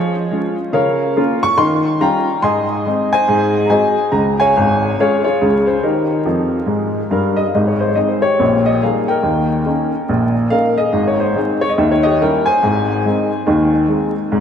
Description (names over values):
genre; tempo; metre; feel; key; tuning
jazz, stride piano; 141 BPM; 4/4; swing 62% on 8ths; Ab major; A4 = 440 Hz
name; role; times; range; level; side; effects
warm upright piano; solo; 0.0-14.4 s; Ab1 to Db6; -13 LUFS; left 1 dB; wide subtle chorus, diffuse ambient delay
room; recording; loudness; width
wet lush hall reverb, RT60 2.6 s; dreamy mix soaked in reverb, vinyl crackle; -13 LUFS; side -8 dB against mid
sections
0.0-7.5 A section; 7.5-14.4 B section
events
upright piano fill 6.3-7.5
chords
0.0 Db/F; 0.7 Bbm/Db; 1.6 Eb9; 2.4 Ab; 3.3 Ab7; 4.1 Db; 5.8 Eb; 7.5 Ab; 8.4 Eb/Bb; 10.9 Ab; 11.8 Eb7b9; 12.6 Ab